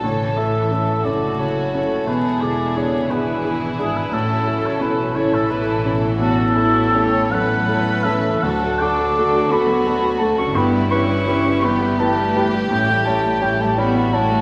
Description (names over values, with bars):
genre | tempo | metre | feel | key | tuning
classical, romantic movement for piano and orchestra | 57 BPM (dotted quarters) | 12/8 | uneven beats, rubato | unclear | A4 = 440 Hz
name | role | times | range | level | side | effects
clear grand piano | melody | 0.0-14.4 s | D2 to C#5 | -24 LUFS | equal | none
warm chamber violin section | melody | 0.0-14.4 s | E4 to C#5 | -28 LUFS | equal | none
mellow oboe | second line | 0.0-14.4 s | G#4 to D6 | -25 LUFS | equal | none
warm chamber violin section | second line | 0.0-14.4 s | C#4 to B4 | -30 LUFS | equal | none
warm chamber viola section | accompaniment | 0.0-14.4 s | D3 to E4 | -30 LUFS | equal | none
dark chamber double bass section | bass | 0.0-14.4 s | E1 to D2 | -29 LUFS | equal | none
warm chamber cello section | bass | 0.0-14.4 s | G#2 to D4 | -29 LUFS | equal | none
room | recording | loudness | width
wet recital hall reverb, RT60 1.8 s | recorded in a church or concert hall, vinyl crackle | -19 LUFS | mono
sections
0.0-14.4 A section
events
none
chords
0.0 A; 2.1 E7; 4.1 A; 8.4 D; 10.5 Em/G; 12.7 A7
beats
| 0.03 1.05 2.07 3.10 | 4.13 5.15 6.18 7.32 | 8.43 9.52 10.55 11.63 | 12.70 13.77